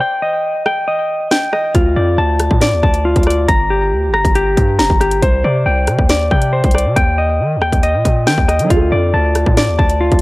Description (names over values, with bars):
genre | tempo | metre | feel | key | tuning
hip hop, drill | 138 BPM | 4/4 | half-time | D phrygian | A4 = 439 Hz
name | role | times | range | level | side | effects
clean electric guitar | arpeggios | 0.0-10.2 s | F4 to Bb5 | -15 LUFS | left 1 dB | low-pass filter, tape echo
drill drum kit | drums | 0.7-10.2 s | hi-hat, kick drum, rim click, snare drum | -15 LUFS | equal | none
distorted 808-style bass | bass | 1.7-10.2 s | F1 to G3 | -16 LUFS | equal | distortion
felt-muted upright piano | accompaniment | 8.6-10.2 s | D3 to A4 | -24 LUFS | right 4 dB | low-pass filter
room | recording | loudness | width
little or no reverb | dry, gritty hardware recording | -12 LUFS | side -20 dB against mid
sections
0.0-10.2 A section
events
break 0.0-1.7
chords
0.0 Eb; 1.7 Dm; 3.5 Gm; 5.2 Csus2; 7.0 Eb; 8.7 Dm